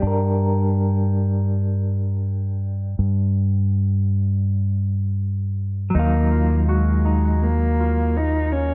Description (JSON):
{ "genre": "trip hop", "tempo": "81 BPM", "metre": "4/4", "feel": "swing 55% on 16ths", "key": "unclear", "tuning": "A4 = 440 Hz", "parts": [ { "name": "clean electric guitar", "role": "accompaniment", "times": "0.0-8.7 s", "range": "Gb3 to F5", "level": "-30 LUFS", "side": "equal", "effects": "tremolo, tape echo" }, { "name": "deep dub fingered electric bass", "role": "bass", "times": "0.0-8.7 s", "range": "Eb2 to G2", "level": "-22 LUFS", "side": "equal", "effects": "none" }, { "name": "Celtic harp", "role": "arpeggios", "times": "5.9-8.7 s", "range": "Eb4 to Gb4", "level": "-33 LUFS", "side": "equal", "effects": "tape echo" }, { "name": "egg shaker", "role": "percussion", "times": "5.9-8.5 s", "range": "none", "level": "-73 LUFS", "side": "equal", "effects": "none" }, { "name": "warm cello", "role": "melody", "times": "6.0-8.7 s", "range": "Ab3 to Eb4", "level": "-25 LUFS", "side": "equal", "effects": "tape echo" } ], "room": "light reverb, small room ambience", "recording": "echo-heavy mix, low-pass filter", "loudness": "-21 LUFS", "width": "mono", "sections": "0.0-8.7 A section", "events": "filter sweep 0.0-8.7", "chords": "0.0 Gm; 5.9 Ebmadd9" }